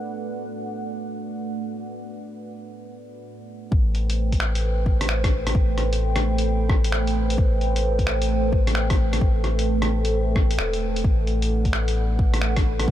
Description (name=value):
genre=future garage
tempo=131 BPM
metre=4/4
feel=swing 65% on 16ths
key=A dorian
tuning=A4 = 440 Hz
part: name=dark analog pad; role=sustained chords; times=0.0-12.9 s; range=A3 to G5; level=-27 LUFS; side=right 2 dB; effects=chorus, phaser, vintage 12-bit sampler grit, sidechain pumping
part: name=warm sub bass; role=bass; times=3.7-12.9 s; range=E1 to A1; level=-23 LUFS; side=equal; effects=sidechain pumping
part: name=electronic kick drum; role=drums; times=3.7-12.9 s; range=none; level=-21 LUFS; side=equal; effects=overdrive
part: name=lo-fi sampler-style drum kit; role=drums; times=3.9-12.9 s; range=finger snaps, hi-hat, rim click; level=-29 LUFS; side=left 1 dB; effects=none
room=light reverb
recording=none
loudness=-20 LUFS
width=side -12 dB against mid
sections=0.0-3.7 A section; 3.7-12.9 B section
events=none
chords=0.0 Bm7/A; 3.7 Am7; 11.0 Bm7/A